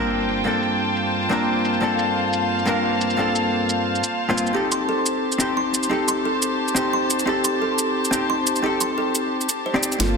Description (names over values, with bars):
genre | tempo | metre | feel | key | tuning
liquid drum and bass | 176 BPM | 4/4 | straight | unclear | A4 = 440 Hz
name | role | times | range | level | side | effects
vintage hollow-body jazz guitar | accompaniment | 0.0-10.2 s | G2 to D5 | -22 LUFS | left 1 dB | low-pass filter, tape echo
warm chamber string section | sustained chords | 0.0-10.2 s | Bb3 to A5 | -24 LUFS | equal | none
sub drop and riser | sound effects | 0.0-0.5, 10.0-10.2 s | none | -36 LUFS | equal | none
pop drum kit | drums | 0.3-10.1 s | hi-hat, shaker, snare drum | -24 LUFS | right 1 dB | low-pass filter on snare, low-pass filter on hats, low-pass filter on perc, low-pass filter on toms, low-pass filter on cymbals
kalimba | arpeggios | 4.5-10.1 s | F4 to C6 | -26 LUFS | right 2 dB | low-pass filter, dub echo
sub bass with octave | bass | 10.0-10.2 s | G1 | -22 LUFS | equal | none
room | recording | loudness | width
wet lush hall reverb, RT60 1.8 s | dense, heavily limited modern master | -19 LUFS | side -5 dB against mid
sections
0.0-10.0 A section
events
impact 0.0-0.5; drum fill 10.0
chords
0.0 Gm11; 4.5 Am7b5